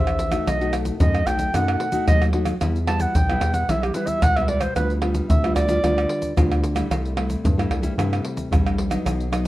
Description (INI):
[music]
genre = samba and choro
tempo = 112 BPM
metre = 4/4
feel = straight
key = unclear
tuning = A4 = 439 Hz
[part]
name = warm clarinet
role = melody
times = 0.0-6.3 s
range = G4 to A5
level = -24 LUFS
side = right 2 dB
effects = none
[part]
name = nylon-string guitar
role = accompaniment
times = 0.0-9.5 s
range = G2 to C5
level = -26 LUFS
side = left 1 dB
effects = none
[part]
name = rubbery square bass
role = bass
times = 0.0-9.5 s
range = A#1 to G2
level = -24 LUFS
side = equal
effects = none
[part]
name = egg shaker, pandeiro, tamborim and surdo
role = percussion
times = 0.1-9.5 s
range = none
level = -23 LUFS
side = equal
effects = none
[sound]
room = moderate studio reverb, RT60 0.9 s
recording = worn, warbling old tape, cassette tape, warbly pitch drift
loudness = -19 LUFS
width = side -16 dB against mid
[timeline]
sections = 0.0-9.5 A section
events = clarinet solo 0.0-9.5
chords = 0.5 B7; 2.6 Em; 4.8 G7/D; 6.9 C6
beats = | 0.47 1.00 1.54 2.08 | 2.62 3.15 3.69 4.22 | 4.76 5.30 5.84 6.37 | 6.91 7.45 7.98 8.52 | 9.06